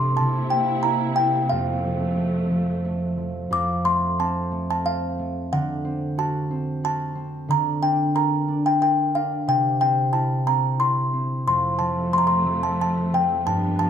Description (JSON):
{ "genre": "children's music, lullaby", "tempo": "91 BPM", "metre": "3/4", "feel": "straight", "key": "F major", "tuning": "A4 = 440 Hz", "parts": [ { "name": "music box", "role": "melody", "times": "0.0-13.9 s", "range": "F5 to D6", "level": "-22 LUFS", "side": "left 1 dB", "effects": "none" }, { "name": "concert harp", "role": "accompaniment", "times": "0.0-13.9 s", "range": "F2 to Bb4", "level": "-24 LUFS", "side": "equal", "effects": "none" }, { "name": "muted studio string section", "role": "sustained chords", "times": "0.0-3.5, 11.5-13.9 s", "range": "F2 to E4", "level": "-32 LUFS", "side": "right 2 dB", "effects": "none" } ], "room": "moderate recital hall reverb, RT60 1.6 s", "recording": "none", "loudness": "-20 LUFS", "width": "side -8 dB against mid", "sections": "0.0-3.5 A section; 3.5-13.9 A section", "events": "none", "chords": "0.2 C7; 1.5 F; 5.5 D7; 7.5 Bb6/D; 9.5 C; 11.5 F", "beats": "0.18 0.84 | 1.50 2.17 2.84 | 3.52 4.19 4.85 | 5.51 6.17 6.83 | 7.48 8.14 8.80 | 9.46 10.12 10.79 | 11.46 12.13 12.80 | 13.46" }